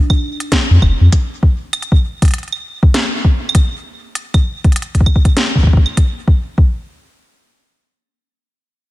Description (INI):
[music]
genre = IDM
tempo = 99 BPM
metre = 4/4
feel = swing 62% on 16ths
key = unclear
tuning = A4 = 440 Hz
[part]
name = electronic kick drum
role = drums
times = 0.1-6.7 s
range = none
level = -11 LUFS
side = equal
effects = studio reverb
[part]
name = organic electronic drum kit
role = drums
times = 0.1-6.1 s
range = claves, hi-hat, snare drum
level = -19 LUFS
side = equal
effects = studio reverb, diffuse ambient delay
[part]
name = warm sub bass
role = bass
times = 0.7-1.1 s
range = F1 to F2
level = -9 LUFS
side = equal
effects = tube saturation
[sound]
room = digital ambience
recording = none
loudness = -12 LUFS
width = side -18 dB against mid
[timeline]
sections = 0.0-6.6 A section; 6.6-8.9 B section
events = none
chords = none